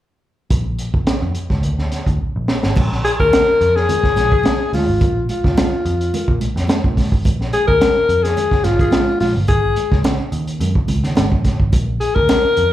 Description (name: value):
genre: funk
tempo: 107 BPM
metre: 4/4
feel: straight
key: Bb mixolydian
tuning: A4 = 440 Hz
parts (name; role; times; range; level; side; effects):
- vintage muted picked electric bass; bass; 0.5-12.7 s; G1 to Bb2; -20 LUFS; equal; none
- crunchy breakbeat drum kit; drums; 0.5-12.7 s; crash cymbal, hi-hat, kick drum, snare drum; -18 LUFS; right 1 dB; none
- congas; percussion; 2.8-12.4 s; none; -26 LUFS; right 5 dB; slapback echo
- breathy alto saxophone; melody; 3.0-12.7 s; F4 to Bb4; -16 LUFS; left 3 dB; plate reverb, slapback echo
- growling tenor saxophone; second line; 4.3-4.5, 8.8-9.0 s; Ab4; -28 LUFS; left 6 dB; plate reverb, slapback echo
room: light reverb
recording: live gig heard through the venue's PA, club reverb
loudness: -14 LUFS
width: side -13 dB against mid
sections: 0.5-2.8 A section; 2.8-12.7 B section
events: drum fill 2.2-2.8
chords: 0.5 Bb; 2.8 Bb7; 9.5 Absus4; 11.7 Bb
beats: | 0.51 1.07 1.64 2.20 | 2.76 3.32 3.89 4.45 | 5.01 5.57 6.13 6.69 | 7.25 7.81 8.37 8.93 | 9.49 10.05 10.61 11.17 | 11.73 12.29